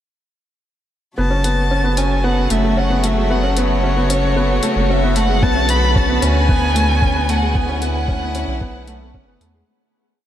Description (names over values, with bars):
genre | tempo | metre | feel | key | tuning
piano and strings electronica | 113 BPM | 4/4 | straight | F# minor | A4 = 440 Hz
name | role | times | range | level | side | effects
dark violin | melody | 1.2-8.8 s | C#5 to B5 | -21 LUFS | equal | diffuse ambient delay
dark string quartet | sustained chords | 1.2-9.6 s | C#3 to F#4 | -24 LUFS | left 1 dB | sidechain pumping
felt-muted upright piano | riff | 1.2-9.6 s | G#3 to C#4 | -21 LUFS | equal | diffuse ambient delay
round analog bass | bass | 1.2-9.6 s | F#1 to E2 | -19 LUFS | equal | sidechain pumping
electronic hi-hat | drums | 1.4-9.5 s | none | -25 LUFS | left 2 dB | high-pass filter on hats, high-pass filter on room
electronic kick drum | drums | 5.4-9.2 s | none | -18 LUFS | equal | none
room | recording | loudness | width
moderate huge ambient reverb, RT60 7.8 s | dreamy mix soaked in reverb | -14 LUFS | side -11 dB against mid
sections
1.2-9.7 build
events
build-up 1.2-9.7; fade-out 6.8-9.7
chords
1.2 F#m; 5.4 Bm7